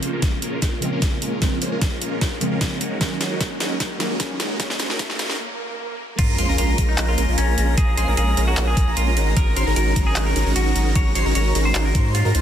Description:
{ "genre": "future bass", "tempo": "151 BPM", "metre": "4/4", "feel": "half-time", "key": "Bb minor", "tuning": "A4 = 440 Hz", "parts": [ { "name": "soft round pluck", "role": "accompaniment", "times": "0.0-5.6 s", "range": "Db3 to Db4", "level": "-28 LUFS", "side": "right 1 dB", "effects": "ensemble chorus, sidechain pumping, ping-pong delay" }, { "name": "warm studio string section", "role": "sustained chords", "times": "0.0-12.4 s", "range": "Ab2 to F4", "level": "-36 LUFS", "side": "left 2 dB", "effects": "none" }, { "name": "supersaw chords", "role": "riff", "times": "0.0-12.4 s", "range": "Ab3 to C5", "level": "-26 LUFS", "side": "right 1 dB", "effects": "phaser, sidechain pumping, low-pass filter" }, { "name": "dubstep drum kit", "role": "drums", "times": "0.0-12.4 s", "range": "crash cymbal, handclaps, hi-hat, snare drum", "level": "-26 LUFS", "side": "equal", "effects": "overdrive, high-pass filter on snare, high-pass filter on toms, high-pass filter on hats, high-pass filter on cymbals, high-pass filter on room" }, { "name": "riser, swell and sub drop", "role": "sound effects", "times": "0.0-7.8 s", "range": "none", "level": "-33 LUFS", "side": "equal", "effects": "none" }, { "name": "electronic kick drum", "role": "drums", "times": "0.2-12.0 s", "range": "none", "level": "-21 LUFS", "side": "equal", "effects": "overdrive" }, { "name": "semi-hollow electric guitar", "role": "melody", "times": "6.2-12.4 s", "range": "Db4 to Db5", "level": "-26 LUFS", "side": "left 1 dB", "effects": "spring reverb, sidechain pumping, tape echo" }, { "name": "airy dreamy lead", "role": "arpeggios", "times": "6.2-12.4 s", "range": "Bb5 to C6", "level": "-29 LUFS", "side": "equal", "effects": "chorus, sidechain pumping, ping-pong delay" }, { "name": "saturated sub bass", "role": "bass", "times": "6.2-12.4 s", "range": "Ab1 to Ab2", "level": "-20 LUFS", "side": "equal", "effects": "sidechain pumping" } ], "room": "digital ambience", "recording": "dense, heavily limited modern master, high-pass filter", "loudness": "-18 LUFS", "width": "side -10 dB against mid", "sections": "0.0-6.2 A section; 6.2-12.4 B section", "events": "build-up 0.0-6.2; drum fill 0.0-5.4; filter sweep on supersaw synth 0.0-6.2; filter sweep 0.0-6.2; break 5.4-6.2; swell 5.4-6.2; drop 6.2-12.4; impact 6.2-7.8", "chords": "0.0 Bbm7; 2.8 Ab9sus4; 6.0 N.C.; 6.2 Bbm7; 9.2 Ab9sus4" }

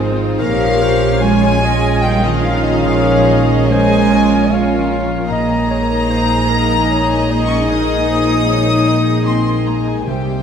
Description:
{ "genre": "cinematic", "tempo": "75 BPM", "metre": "3/4", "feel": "rubato", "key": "unclear", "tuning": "A4 = 442 Hz", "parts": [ { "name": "mellow clarinet", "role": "second line", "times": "0.0-10.4 s", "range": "Ab4 to F5", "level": "-23 LUFS", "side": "equal", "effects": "none" }, { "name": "warm symphonic violin section", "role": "second line", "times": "0.0-10.4 s", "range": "F4 to F5", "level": "-23 LUFS", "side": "left 3 dB", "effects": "none" }, { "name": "dark symphonic viola section", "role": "accompaniment", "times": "0.0-10.4 s", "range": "G3 to Ab4", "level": "-21 LUFS", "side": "right 1 dB", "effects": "none" }, { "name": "mellow French horn section", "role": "sustained chords", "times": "0.0-10.4 s", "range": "G3 to Eb4", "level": "-21 LUFS", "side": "left 4 dB", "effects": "none" }, { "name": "concert harp", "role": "arpeggios", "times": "0.0-10.4 s", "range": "Bb2 to C5", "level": "-22 LUFS", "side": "left 6 dB", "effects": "none" }, { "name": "dark symphonic double bass section", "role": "bass", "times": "0.0-10.4 s", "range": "Ab1 to C2", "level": "-19 LUFS", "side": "right 3 dB", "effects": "none" }, { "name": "warm symphonic violin section", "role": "melody", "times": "0.4-10.4 s", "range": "Eb5 to Eb6", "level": "-22 LUFS", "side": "left 3 dB", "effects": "none" }, { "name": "silver concert flute", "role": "second line", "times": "0.4-10.4 s", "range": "Eb5 to Eb6", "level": "-24 LUFS", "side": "left 2 dB", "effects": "none" }, { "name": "warm symphonic cello section", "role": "bass", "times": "0.4-10.4 s", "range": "Eb3 to Eb4", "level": "-20 LUFS", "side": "right 5 dB", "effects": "none" }, { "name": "timpani", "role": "percussion", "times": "10.1-10.4 s", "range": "C3", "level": "-23 LUFS", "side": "right 3 dB", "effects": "none" } ], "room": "wet scoring stage reverb, RT60 1.9 s", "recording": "none", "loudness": "-12 LUFS", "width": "side -7 dB against mid", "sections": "0.0-10.4 A section", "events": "none", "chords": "0.4 Bbm7; 5.3 Ebsus4/Bb" }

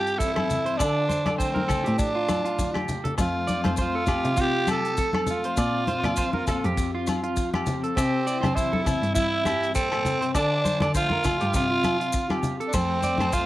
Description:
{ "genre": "highlife guitar band", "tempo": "100 BPM", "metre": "4/4", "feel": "swing 55% on 16ths", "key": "F major", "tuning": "A4 = 441 Hz", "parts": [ { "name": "raspy tenor saxophone", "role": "melody", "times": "0.0-13.5 s", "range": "C4 to A4", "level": "-26 LUFS", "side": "right 1 dB", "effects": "cassette tape" }, { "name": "mellow electric guitar", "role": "accompaniment", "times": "0.0-13.5 s", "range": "F2 to A4", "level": "-33 LUFS", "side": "left 5 dB", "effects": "tremolo, cassette tape" }, { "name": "electric guitar at the edge of break-up", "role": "arpeggios", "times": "0.0-13.5 s", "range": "E4 to D5", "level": "-30 LUFS", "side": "right 4 dB", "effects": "cassette tape, tape echo" }, { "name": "bright cello", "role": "bass", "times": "0.0-13.5 s", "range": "F2 to D3", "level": "-30 LUFS", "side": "equal", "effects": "none" }, { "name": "damped 70s drum kit", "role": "drums", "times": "0.1-13.5 s", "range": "crash cymbal, hi-hat, kick drum, rim click", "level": "-30 LUFS", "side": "equal", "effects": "cassette tape" }, { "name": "maracas", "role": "percussion", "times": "0.2-13.5 s", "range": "none", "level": "-38 LUFS", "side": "left 5 dB", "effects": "none" }, { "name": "agogo bells", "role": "percussion", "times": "0.4-13.3 s", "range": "none", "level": "-35 LUFS", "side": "left 6 dB", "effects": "none" }, { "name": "congas", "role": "percussion", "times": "0.4-13.3 s", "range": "none", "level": "-30 LUFS", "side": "left 2 dB", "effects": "none" } ], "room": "light reverb, studio ambience", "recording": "home recording on cassette", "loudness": "-22 LUFS", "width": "side -15 dB against mid", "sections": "0.0-12.7 A section", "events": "drum fill 2.6-3.2", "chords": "0.0 C; 0.8 Dm; 3.2 F; 5.6 Bbsus2; 8.0 C; 10.4 Dm; 11.5 Csus4; 12.7 F" }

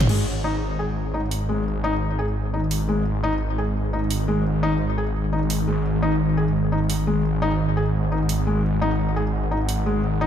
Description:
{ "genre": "dark technical drum and bass", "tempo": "172 BPM", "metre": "4/4", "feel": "straight", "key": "unclear", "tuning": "A4 = 440 Hz", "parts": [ { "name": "deep dark ambient pad", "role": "sustained chords", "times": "0.0-10.3 s", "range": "D#3 to F#5", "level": "-25 LUFS", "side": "right 1 dB", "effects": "chorus, built-in reverb, vintage 12-bit sampler grit" }, { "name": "drum and bass drum kit", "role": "drums", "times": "0.0-9.8 s", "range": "crash cymbal, hi-hat, toms", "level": "-25 LUFS", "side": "right 1 dB", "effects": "overdrive, studio reverb" }, { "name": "felt-muted upright piano", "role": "arpeggios", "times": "0.1-10.3 s", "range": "G#3 to G#4", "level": "-26 LUFS", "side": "left 2 dB", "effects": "ping-pong delay" }, { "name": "snarling distorted saw bass", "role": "bass", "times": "0.1-10.3 s", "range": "G#1", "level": "-24 LUFS", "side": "equal", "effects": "distortion" } ], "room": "light reverb, digital ambience", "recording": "none", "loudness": "-20 LUFS", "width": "side -9 dB against mid", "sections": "0.1-10.3 A section", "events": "filter sweep on ambient pad 0.1-10.3", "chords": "0.1 G#5" }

